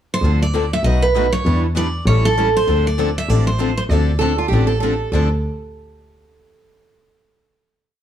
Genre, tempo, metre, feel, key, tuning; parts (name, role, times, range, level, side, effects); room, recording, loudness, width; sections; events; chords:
acoustic string swing (jazz manouche); 196 BPM; 4/4; swing 59% on 8ths; D minor; A4 = 440 Hz
picked steel-string acoustic guitar; melody; 0.1-4.8 s; A4 to E5; -20 LUFS; right 2 dB
picked steel-string acoustic guitar; accompaniment; 0.2-5.3 s; B2 to A4; -24 LUFS; left 8 dB
picked steel-string acoustic guitar; accompaniment; 0.2-5.3 s; B2 to B4; -26 LUFS; right 4 dB
rich double bass; bass; 0.2-5.3 s; A1 to E2; -18 LUFS; equal
picked steel-string acoustic guitar; second line; 4.2-5.3 s; F4 to A4; -22 LUFS; right 4 dB
light reverb; dark, warm production; -15 LUFS; side -10 dB against mid
0.0-0.2 pickup bar; 0.2-5.1 A section; 5.1-6.3 final chord
0.2 Dm7; 0.8 B7; 1.4 Em7; 2.1 A7; 2.7 Dm7